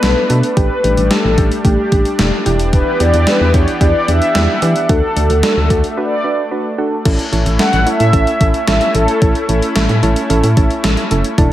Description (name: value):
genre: synth-pop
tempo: 111 BPM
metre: 4/4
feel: straight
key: unclear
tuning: A4 = 444 Hz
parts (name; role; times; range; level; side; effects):
- mellow synth brass; melody; 0.0-9.4 s; G4 to F#5; -17 LUFS; left 1 dB; chorus
- soft electric-piano-like synth keys; accompaniment; 0.0-11.5 s; A3 to B4; -19 LUFS; right 2 dB; chorus
- lush unison pad; sustained chords; 0.0-11.5 s; E3 to F#5; -21 LUFS; left 1 dB; chorus
- solid FM bass; bass; 0.0-11.5 s; E1 to E3; -15 LUFS; equal; none
- gated 80s digital drum machine; drums; 0.0-11.5 s; crash cymbal, hi-hat, kick drum, snare drum; -16 LUFS; equal; gated reverb, gated reverb snare, overdrive
room: light reverb, digital ambience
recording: none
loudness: -11 LUFS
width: side -13 dB against mid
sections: 0.0-7.1 A section; 7.1-11.5 B section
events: break 6.0-7.1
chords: 0.0 Bm7; 0.6 A7sus4; 2.5 Em7; 4.9 D; 7.1 A